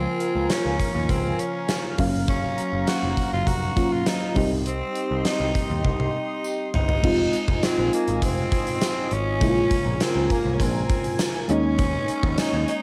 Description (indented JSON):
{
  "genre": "1980s-style pop",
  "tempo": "101 BPM",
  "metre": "4/4",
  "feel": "straight",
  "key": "F minor",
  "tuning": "A4 = 440 Hz",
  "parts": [
    { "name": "raspy tenor saxophone", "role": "melody", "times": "0.0-12.8 s", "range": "Bb3 to Gb4", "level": "-31 LUFS", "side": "equal", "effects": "cassette tape, plate reverb" },
    { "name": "mellow FM electric piano", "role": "accompaniment", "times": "0.0-12.8 s", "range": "Db3 to F5", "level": "-28 LUFS", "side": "equal", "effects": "chorus, plate reverb" },
    { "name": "lush unison pad", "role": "sustained chords", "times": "0.0-12.8 s", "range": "Db3 to C6", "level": "-35 LUFS", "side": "equal", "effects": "chorus, tremolo" },
    { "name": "overdriven picked electric bass", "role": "bass", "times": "0.0-12.6 s", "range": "F1 to Eb2", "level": "-30 LUFS", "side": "equal", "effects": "none" },
    { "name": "gated 80s drum kit", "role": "drums", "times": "0.2-12.8 s", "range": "crash cymbal, hi-hat, kick drum, snare drum, tambourine, toms", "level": "-28 LUFS", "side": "equal", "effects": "cassette tape" },
    { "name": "tambourine", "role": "percussion", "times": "0.5-12.5 s", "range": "none", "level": "-43 LUFS", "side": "equal", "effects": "none" }
  ],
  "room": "wet studio reverb, RT60 0.6 s",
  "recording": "home recording on cassette",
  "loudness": "-23 LUFS",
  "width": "mono",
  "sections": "0.0-7.0 A section; 7.0-12.8 B section",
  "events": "drum fill 5.8-7.0",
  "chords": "0.0 Bbm/Db; 2.0 Gbmaj7; 4.4 Cm; 7.0 Fm7; 9.4 Bbm7; 11.5 Eb7sus4",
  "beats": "0.50 1.09 1.69 | 2.28 2.88 3.47 4.07 | 4.66 5.25 5.85 6.44 | 7.04 7.63 8.22 8.82 | 9.41 10.01 10.60 11.19 | 11.79 12.38"
}